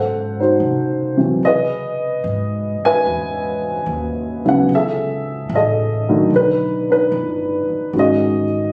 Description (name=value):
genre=jazz ballad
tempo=74 BPM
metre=4/4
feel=swing 69% on 8ths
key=unclear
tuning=A4 = 440 Hz
part: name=dark upright piano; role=accompaniment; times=0.0-8.7 s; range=B#2 to G#5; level=-18 LUFS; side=equal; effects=none
part: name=upright bass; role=bass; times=0.0-8.7 s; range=G1 to C#3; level=-28 LUFS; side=equal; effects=none
room=light reverb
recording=recorded on a phone in the room, studio reverb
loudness=-18 LUFS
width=mono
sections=0.0-8.7 A section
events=none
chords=0.0 G#7b9; 1.4 C#m9; 4.7 F#m9; 6.3 Baug; 7.9 Emaj9 (rootless)